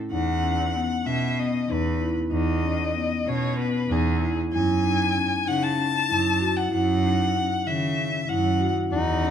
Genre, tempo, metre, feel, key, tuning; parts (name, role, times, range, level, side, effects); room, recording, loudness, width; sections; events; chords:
contemporary instrumental, chamber music in an uneven meter; 191 BPM (eighths); 7/8; straight; F# dorian; A4 = 439 Hz
dark violin; melody; 0.1-9.3 s; G#4 to A5; -27 LUFS; left 5 dB
marimba with soft mallets; arpeggios; 0.1-9.3 s; D#3 to F#4; -26 LUFS; left 2 dB
rich cello; bass; 0.1-9.3 s; E2 to C#3; -26 LUFS; right 4 dB
mellow soprano saxophone; second line; 8.9-9.3 s; D#4; -27 LUFS; left 5 dB
moderate recital hall reverb, RT60 1.4 s; close, detailed microphones; -22 LUFS; side -8 dB against mid
0.1-9.3 A section
0.1 E5; 4.5 F#m7